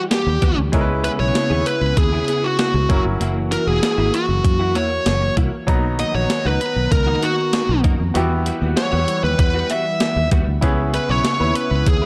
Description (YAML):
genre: 1980s-style pop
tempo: 97 BPM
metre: 4/4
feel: straight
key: B major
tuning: A4 = 439 Hz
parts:
  - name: bright grand piano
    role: accompaniment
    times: 0.0-12.1 s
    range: F#3 to A#5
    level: -29 LUFS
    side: equal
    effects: none
  - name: warm analog pad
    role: sustained chords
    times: 0.0-12.1 s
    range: C#3 to A#5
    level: -29 LUFS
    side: equal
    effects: chorus
  - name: bluesy overdriven lead guitar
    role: melody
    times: 0.1-12.1 s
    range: F#4 to E5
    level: -24 LUFS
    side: equal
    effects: distortion, tape echo
  - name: direct-recorded clean electric guitar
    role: riff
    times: 0.1-12.1 s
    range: G3 to B4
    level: -31 LUFS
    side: equal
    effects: ensemble chorus
  - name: clean 12-bit digital drum machine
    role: drums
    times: 0.1-12.0 s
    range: hi-hat, kick drum, snare drum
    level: -23 LUFS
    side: equal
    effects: none
  - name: fingered electric bass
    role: bass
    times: 0.3-12.1 s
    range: E1 to F#2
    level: -23 LUFS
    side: equal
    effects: none
room: light reverb, digital ambience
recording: dark, warm production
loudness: -19 LUFS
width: mono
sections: 0.0-12.1 A section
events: none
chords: 0.0 Emadd9; 0.7 C#m7; 2.9 F#7; 5.7 Bmaj7; 8.2 Emadd9; 10.6 C#m7